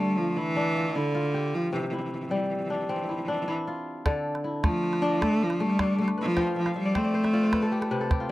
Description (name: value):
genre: west african traditional, West African string and xylophone music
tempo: 103 BPM (dotted quarters)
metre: 12/8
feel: straight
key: D dorian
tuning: A4 = 439 Hz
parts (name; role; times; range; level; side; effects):
- clear cello; melody; 0.0-8.1 s; D3 to A3; -26 LUFS; equal; none
- kora; arpeggios; 0.0-8.3 s; C3 to G5; -28 LUFS; left 1 dB; none
- calabash; percussion; 4.1-8.2 s; none; -28 LUFS; right 1 dB; none
room: small room ambience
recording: dry, close 1970s-style studio recording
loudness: -24 LUFS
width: side -16 dB against mid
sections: 0.0-4.1 A section; 4.1-8.3 B section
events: kora fill 6.4-8.3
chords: 0.0 Dm; 1.7 C; 4.1 Dm; 6.4 F; 7.5 C5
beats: 0.56 1.15 | 1.73 2.31 2.89 3.47 | 4.05 4.63 5.21 5.79 | 6.37 6.95 7.53 8.11